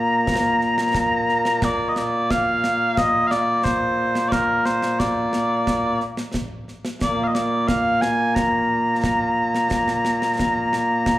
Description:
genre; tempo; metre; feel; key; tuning
scottish traditional, Scottish pipe music; 89 BPM; 4/4; straight; Bb major; A4 = 441 Hz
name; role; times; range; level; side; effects
mellow small bagpipes; melody; 0.0-11.2 s; Bb2 to Bb5; -19 LUFS; equal; none
concert snare drum and concert bass drum; drums; 0.3-11.2 s; none; -27 LUFS; right 1 dB; none
room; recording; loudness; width
moderate plate reverb, RT60 2.0 s, small room reverb; live gig heard through the venue's PA, club reverb; -18 LUFS; side -15 dB against mid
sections
0.0-1.6 A section; 1.6-11.2 A section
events
none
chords
none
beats
0.27 0.95 | 1.62 2.30 2.97 3.65 | 4.32 4.99 5.67 6.34 | 7.02 7.69 8.36 9.04 | 9.71 10.39 11.06

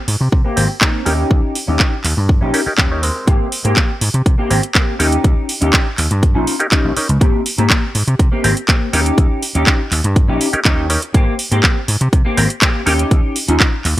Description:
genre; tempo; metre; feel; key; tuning
filtered disco house; 122 BPM; 4/4; straight; Ab major; A4 = 440 Hz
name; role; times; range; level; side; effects
vintage slap bass; bass; 0.1-14.0 s; Ab1 to C3; -17 LUFS; equal; sidechain pumping, low-pass filter
house drum kit; drums; 0.1-14.0 s; handclaps, hi-hat; -18 LUFS; right 1 dB; sidechain pumping on hats
clean electric guitar; riff; 0.2-14.0 s; Bb3 to G4; -20 LUFS; left 1 dB; analog chorus, sidechain pumping, low-pass filter
electronic kick drum; drums; 0.3-13.7 s; none; -14 LUFS; equal; none
bright clav; accompaniment; 0.6-13.7 s; Ab3 to Bb4; -21 LUFS; equal; phaser, sidechain pumping, low-pass filter
room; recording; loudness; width
little or no reverb; dry, gritty hardware recording; -12 LUFS; side -15 dB against mid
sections
0.0-14.0 A section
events
filter sweep 0.0-14.0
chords
0.0 Abmaj9; 1.1 Eb7; 3.3 Abmaj9; 5.0 Eb7; 7.2 Abmaj9; 8.9 Eb7; 11.1 Abmaj9; 12.9 Eb7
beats
0.33 0.82 | 1.31 1.80 2.29 2.79 | 3.28 3.77 4.26 4.75 | 5.24 5.74 6.23 6.72 | 7.21 7.70 8.20 8.69 | 9.18 9.67 10.16 10.65 | 11.15 11.64 12.13 12.62 | 13.11 13.61

